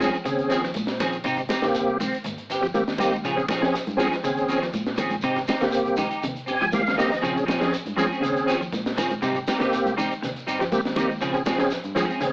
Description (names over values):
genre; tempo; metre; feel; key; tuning
afrobeat; 120 BPM; 4/4; straight; Bb dorian; A4 = 440 Hz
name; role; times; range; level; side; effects
bright tonewheel organ; accompaniment; 0.0-12.3 s; Bb3 to Ab5; -24 LUFS; equal; slow rotary speaker, chorus vibrato, plate reverb
clean electric guitar; arpeggios; 0.0-12.3 s; Ab2 to G3; -34 LUFS; left 1 dB; wide subtle chorus, plate reverb
clean electric guitar; stabs; 0.0-12.2 s; F3 to Ab4; -26 LUFS; right 1 dB; ensemble chorus, plate reverb
fingered electric bass; bass; 0.0-12.3 s; G1 to Bb2; -36 LUFS; equal; none
crunchy breakbeat drum kit; drums; 0.0-12.3 s; hi-hat, kick drum, snare drum; -30 LUFS; equal; cassette tape
congas; percussion; 0.0-12.3 s; none; -30 LUFS; equal; none
shekere; percussion; 0.0-12.3 s; none; -36 LUFS; equal; none
room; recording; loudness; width
moderate small room reverb, RT60 0.5 s; home recording on cassette, AM radio sound; -21 LUFS; side -25 dB against mid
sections
0.0-12.3 A section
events
tonewheel organ fill 6.2-7.2; drum fill 6.7-7.2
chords
0.0 Bbm9; 1.3 Abmaj7; 3.2 Bbm9; 5.2 Abmaj7; 7.2 Bbm9; 9.2 Abmaj7; 11.2 Bbm9